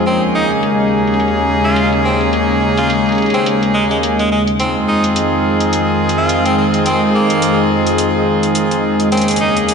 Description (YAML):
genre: glitch hop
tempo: 106 BPM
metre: 4/4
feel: swing 57% on 16ths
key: F minor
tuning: A4 = 440 Hz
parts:
  - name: warbly tape-like pad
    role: sustained chords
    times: 0.0-9.7 s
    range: Eb2 to Ab3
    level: -15 LUFS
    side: equal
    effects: chorus, built-in reverb
  - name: brilliant horn section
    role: stabs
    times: 0.0-9.7 s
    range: Bb3 to Ab4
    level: -16 LUFS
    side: equal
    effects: diffuse ambient delay
  - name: electronic hi-hat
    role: drums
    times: 0.0-9.7 s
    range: none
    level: -24 LUFS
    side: equal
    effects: low-pass filter on hats, low-pass filter on cymbals
  - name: edgy tenor saxophone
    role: melody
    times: 0.1-9.6 s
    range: Ab3 to F4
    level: -20 LUFS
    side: right 1 dB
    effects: diffuse ambient delay
room: wet lush hall reverb, RT60 1.8 s, small room ambience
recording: dreamy mix soaked in reverb, nothing above 10.4 kHz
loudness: -12 LUFS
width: side -6 dB against mid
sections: 0.0-9.7 A section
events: none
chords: 0.1 Eb7sus4; 4.6 Fm7; 9.1 Eb7sus4